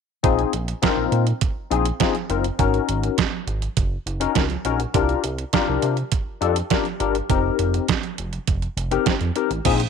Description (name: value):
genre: early-eighties boogie funk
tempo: 102 BPM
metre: 4/4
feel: straight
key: unclear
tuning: A4 = 440 Hz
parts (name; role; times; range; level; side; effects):
- barky tine electric piano; accompaniment; 0.2-9.8 s; C4 to Bb4; -22 LUFS; left 12 dB; overdrive, ensemble chorus
- chorused synth bass; bass; 0.2-9.9 s; F1 to C3; -24 LUFS; right 1 dB; none
- detuned 8-bit digital drum machine; drums; 0.2-9.9 s; crash cymbal, hi-hat, kick drum, snare drum; -23 LUFS; right 6 dB; none
room: light reverb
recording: 1960s-style stereo with parts hard left and right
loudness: -19 LUFS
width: side -6 dB against mid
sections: 0.2-9.7 A section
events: none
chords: 0.2 Bb9sus4; 2.6 Ab9sus4; 4.9 C9sus4; 7.3 F9sus4